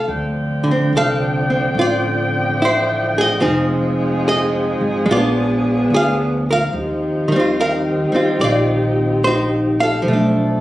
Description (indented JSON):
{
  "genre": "jazz ballad",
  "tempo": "72 BPM",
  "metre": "4/4",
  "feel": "swing 68% on 8ths",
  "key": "unclear",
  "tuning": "A4 = 436 Hz",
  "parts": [
    { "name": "archtop guitar, miked and amplified", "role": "accompaniment", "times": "0.0-10.6 s", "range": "D3 to F5", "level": "-17 LUFS", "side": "equal", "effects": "none" },
    { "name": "upright bass", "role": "bass", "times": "0.0-10.6 s", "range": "F1 to Eb2", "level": "-23 LUFS", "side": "equal", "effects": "none" },
    { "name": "warm saxophone section", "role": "sustained chords", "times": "0.1-10.6 s", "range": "B2 to G5", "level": "-21 LUFS", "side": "left 1 dB", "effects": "none" }
  ],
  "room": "moderate large studio reverb, RT60 1.0 s",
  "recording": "recorded on a phone in the room, studio reverb, compression, faint mains hum",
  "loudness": "-15 LUFS",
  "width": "side -15 dB against mid",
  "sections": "0.1-10.6 A section",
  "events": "none",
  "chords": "0.1 Dm11; 3.4 Fm7; 5.1 Bb7b9; 6.7 Eb69; 10.0 Bm7b5",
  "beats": "| 0.08 0.92 1.75 2.58 | 3.41 4.24 5.07 5.90 | 6.73 7.56 8.39 9.22 | 10.05"
}